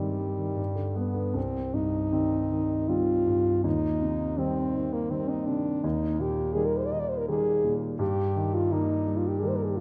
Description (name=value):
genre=classical, romantic duo for French horn and grand piano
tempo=81 BPM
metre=3/4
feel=uneven beats, rubato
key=C minor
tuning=A4 = 440 Hz
part: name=mellow French horn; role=melody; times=0.0-9.8 s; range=G3 to Eb5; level=-30 LUFS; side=equal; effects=none
part: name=warm grand piano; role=accompaniment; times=0.0-9.8 s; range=C2 to C4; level=-31 LUFS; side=equal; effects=none
room=wet scoring stage reverb, RT60 1.8 s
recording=none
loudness=-28 LUFS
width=mono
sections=0.0-1.4 A section; 1.4-9.8 B section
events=none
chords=0.0 Cm/G; 0.6 G; 1.4 Cm; 3.6 Cm/Eb; 5.8 Eb; 8.0 Eb/G